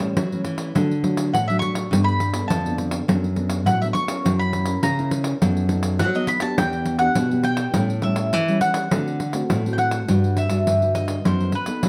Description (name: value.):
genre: samba and choro.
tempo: 103 BPM.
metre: 4/4.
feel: straight.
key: D major.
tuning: A4 = 440 Hz.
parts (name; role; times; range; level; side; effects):
nylon-string guitar; accompaniment; 0.0-11.9 s; A2 to B4; -28 LUFS; equal; none.
nylon-string guitar; bass; 0.0-11.9 s; E2 to G3; -25 LUFS; equal; none.
pandeiro; percussion; 0.0-11.9 s; none; -28 LUFS; equal; none.
mandolin; melody; 1.3-11.9 s; B4 to C#6; -26 LUFS; equal; none.
room: light reverb.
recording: dark, warm production.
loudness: -21 LUFS.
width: mono.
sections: 0.0-10.1 A section; 10.1-11.9 B section.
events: none.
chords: 0.0 A; 0.7 D; 1.9 Gadd9; 3.1 D6/F#; 4.2 F#7; 5.4 B7/F#; 6.6 Em7; 7.8 A7; 8.9 D7; 10.1 Gmaj7; 11.3 B7/F#.